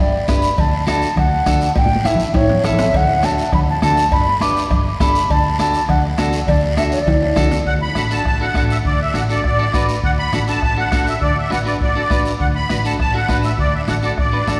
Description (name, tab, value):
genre	latin, cumbia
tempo	203 BPM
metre	4/4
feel	straight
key	D major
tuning	A4 = 440 Hz
part	breathy mellow concert flute	melody	0.0-7.5 s	C#5 to D6	-21 LUFS	equal	none
part	hollow-body short-scale fingered electric bass	bass	0.0-14.6 s	G1 to D2	-24 LUFS	equal	none
part	clean electric guitar	accompaniment	0.3-14.6 s	C#4 to B4	-26 LUFS	equal	none
part	bombo	percussion	0.3-14.6 s	none	-24 LUFS	equal	none
part	congas	percussion	0.3-14.6 s	none	-28 LUFS	equal	none
part	guiro	percussion	0.3-14.6 s	none	-34 LUFS	equal	none
part	timbales and cowbell	percussion	0.3-7.6 s	none	-30 LUFS	equal	none
part	musette accordion	second line	7.7-14.6 s	D5 to B5	-22 LUFS	equal	none
room	wet church reverb, RT60 3.6 s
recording	recorded in a church or concert hall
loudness	-17 LUFS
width	mono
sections	0.0-7.7 A section; 7.7-14.6 B section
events	drum fill 1.8-2.9, 7.1-7.7; accordion solo 7.7-14.6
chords	0.0 G; 0.6 D; 1.8 A7; 2.9 D; 4.1 G; 5.3 D